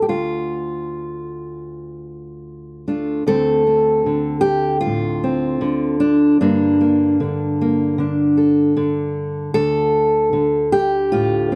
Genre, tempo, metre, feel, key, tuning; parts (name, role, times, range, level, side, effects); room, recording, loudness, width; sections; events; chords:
folk, solo fingerstyle acoustic guitar; 76 BPM; 4/4; straight; D minor; A4 = 440 Hz
fingerpicked steel-string acoustic guitar; solo; 0.0-11.6 s; D2 to A4; -19 LUFS; equal
small room ambience; dry, close 1970s-style studio recording; -18 LUFS; mono
0.0-3.3 A section; 3.3-11.6 B section
0.0 Dm; 3.3 Dm7; 6.4 Gmadd9; 9.5 Dm